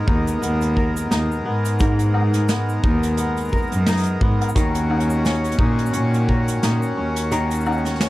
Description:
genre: folktronica.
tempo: 87 BPM.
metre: 4/4.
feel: swing 56% on 16ths.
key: G# minor.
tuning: A4 = 440 Hz.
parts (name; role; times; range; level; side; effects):
accordion; sustained chords; 0.0-8.1 s; D#3 to A#4; -26 LUFS; left 1 dB; none.
kora; arpeggios; 0.0-8.1 s; G#2 to A#4; -26 LUFS; equal; tape echo, plate reverb.
dark cello; bass; 0.1-8.1 s; D#2 to A#2; -20 LUFS; equal; tube saturation.
kick drum; drums; 0.1-6.4 s; none; -22 LUFS; equal; none.
jazz brush drum kit; drums; 0.3-8.1 s; cabasa, hi-hat, snare drum, woodblock; -26 LUFS; equal; none.
room: light reverb.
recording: dark, warm production.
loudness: -17 LUFS.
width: side -17 dB against mid.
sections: 0.0-8.1 A section.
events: kick drops out 7.3-8.1.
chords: 0.0 G#madd9; 4.6 D#m7.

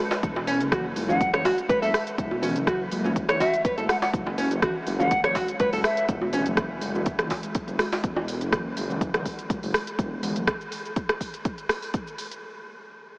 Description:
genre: afro house.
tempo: 123 BPM.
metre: 4/4.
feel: swing 53% on 16ths.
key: unclear.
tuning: A4 = 440 Hz.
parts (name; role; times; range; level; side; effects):
afro-pop drum kit; drums; 0.1-12.4 s; hi-hat, rim click, shaker; -29 LUFS; equal; none.
djembe; percussion; 0.1-8.3 s; none; -32 LUFS; equal; none.
dark detuned saw bass; bass; 0.2-10.5 s; E1 to F#1; -31 LUFS; equal; tube saturation, sidechain pumping.
electronic kick drum; drums; 0.2-12.0 s; none; -29 LUFS; equal; overdrive.
nylon-string guitar; arpeggios; 0.5-6.5 s; C#4 to C#5; -27 LUFS; equal; sidechain pumping, diffuse ambient delay.
congas; percussion; 0.7-10.3 s; none; -34 LUFS; left 1 dB; none.
hollow concert flute; melody; 1.1-6.1 s; E5 to F#5; -29 LUFS; equal; diffuse ambient delay.
room: moderate huge ambient reverb, RT60 7.1 s.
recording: AM radio sound.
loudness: -23 LUFS.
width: side -27 dB against mid.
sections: 0.0-12.4 A section.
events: drop 0.0-12.4.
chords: 0.0 F#7(no3).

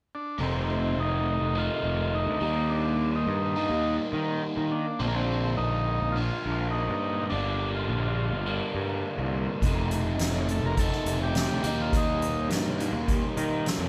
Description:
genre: psychedelic rock.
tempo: 104 BPM.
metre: 4/4.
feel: straight.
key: unclear.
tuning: A4 = 440 Hz.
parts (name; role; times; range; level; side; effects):
combo organ; melody; 0.1-12.5 s; Bb3 to Bb4; -34 LUFS; equal; none.
overdriven electric guitar; riff; 0.4-13.9 s; F2 to Eb4; -33 LUFS; equal; phaser.
fuzz picked electric bass; bass; 0.4-13.9 s; F1 to Eb3; -31 LUFS; equal; overdrive.
soft-mallet drum kit; drums; 9.6-13.8 s; hi-hat, kick drum, snare drum; -32 LUFS; equal; none.
room: moderate studio ambience, RT60 0.5 s.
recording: band playing live in one room.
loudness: -28 LUFS.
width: mono.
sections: 0.4-13.9 A section.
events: none.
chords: 0.4 F7; 2.4 Eb; 5.0 Bb; 7.3 Gm7; 9.6 F7; 11.6 Eb.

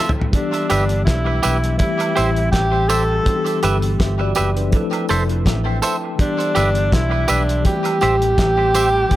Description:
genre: lovers rock reggae.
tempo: 82 BPM.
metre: 4/4.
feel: swing 55% on 16ths.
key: G major.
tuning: A4 = 439 Hz.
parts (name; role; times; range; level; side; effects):
mellow tine electric piano; accompaniment; 0.0-9.2 s; E3 to A5; -24 LUFS; left 2 dB; medium stereo tremolo, tape echo.
twangy electric guitar; stabs; 0.0-8.9 s; G4 to E5; -23 LUFS; right 3 dB; vibrato effect, tape echo.
cloth-damped thuddy drum kit; drums; 0.1-9.2 s; hi-hat, kick drum, snare drum, toms; -20 LUFS; equal; none.
breathy tenor saxophone; melody; 0.3-9.2 s; D4 to A4; -20 LUFS; equal; tape echo.
vintage muted fingered electric bass; bass; 0.7-9.0 s; F1 to B1; -20 LUFS; equal; none.
tambourine and woodblock; percussion; 0.7-8.9 s; none; -33 LUFS; right 6 dB; tape echo.
room: moderate spring reverb, RT60 1.9 s, small room ambience.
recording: none.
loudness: -15 LUFS.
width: side -15 dB against mid.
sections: 0.0-9.2 A section.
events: drum fill 0.0-0.3; tine electric piano fill 5.1-6.2.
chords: 0.3 G6; 1.8 Am7; 3.3 G6; 4.7 Fmaj7; 6.2 G6; 7.7 Am7.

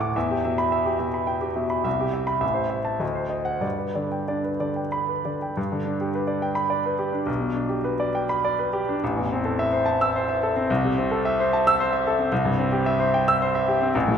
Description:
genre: classical, romantic character piece for solo piano.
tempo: 90-115 BPM.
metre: 3/4.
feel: rubato.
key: G major.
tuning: A4 = 440 Hz.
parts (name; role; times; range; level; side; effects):
clear grand piano; solo; 0.0-14.2 s; A1 to E6; -21 LUFS; equal; none.
room: wet concert hall reverb, RT60 1.8 s.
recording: recorded in a church or concert hall.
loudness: -21 LUFS.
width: side -8 dB against mid.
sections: 0.0-5.6 A section; 5.6-14.2 A section.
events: none.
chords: 0.1 Em; 1.9 Cmaj7; 2.4 Am; 3.0 D7b9; 3.6 G; 7.3 G/B; 9.0 Am; 10.7 Am/C; 12.3 C.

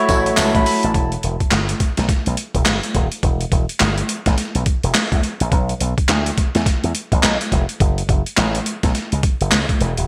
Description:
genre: R&B, new jack swing.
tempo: 105 BPM.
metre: 4/4.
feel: swing 61% on 16ths.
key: E dorian.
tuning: A4 = 440 Hz.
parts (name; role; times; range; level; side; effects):
bright tine electric piano; accompaniment; 0.0-1.1 s; A3 to B5; -20 LUFS; equal; none.
brassy analog pad; sustained chords; 0.0-0.9 s; F#3 to E4; -31 LUFS; equal; none.
slap bass with an envelope filter; bass; 0.1-10.1 s; D#1 to E2; -22 LUFS; equal; none.
boom bap sampler-style drum kit; drums; 0.1-10.1 s; handclaps, hi-hat, kick drum, snare drum, tambourine; -20 LUFS; equal; overdrive, gated reverb.
group handclap; percussion; 0.4-0.5 s; none; barely audible; none; none.
room: moderate plate reverb, RT60 2.1 s.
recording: bright 1980s-style digital production.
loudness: -18 LUFS.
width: mono.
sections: 0.9-10.1 A section.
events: none.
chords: 0.0 F#m7; 0.9 Em; 5.5 Bm; 7.8 F#m7.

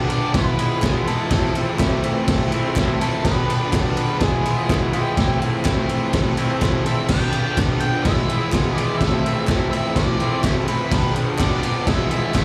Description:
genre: garage rock duo or trio.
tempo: 125 BPM.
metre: 4/4.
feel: straight.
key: A minor.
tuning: A4 = 440 Hz.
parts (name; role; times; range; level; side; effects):
combo organ; sustained chords; 0.0-12.4 s; D4 to D5; -36 LUFS; equal; none.
raw garage guitar; riff; 0.0-12.4 s; G2 to E4; -26 LUFS; equal; overdrive, slapback echo.
octave-fuzz lead guitar; melody; 0.1-12.4 s; G4 to G5; -30 LUFS; equal; distortion, slapback echo.
raw garage drum kit; drums; 0.1-12.4 s; crash cymbal, kick drum, ride cymbal, snare drum; -22 LUFS; equal; none.
group handclap; percussion; 0.8-12.4 s; none; -37 LUFS; equal; slapback echo.
room: little or no reverb.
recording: live gig heard through the venue's PA, club reverb.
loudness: -20 LUFS.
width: mono.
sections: 0.0-12.4 A section.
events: none.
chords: 0.3 E; 1.3 Am; 3.2 G; 4.2 E; 5.2 Am; 7.1 G; 8.1 E; 9.0 Am; 10.9 G; 11.9 E.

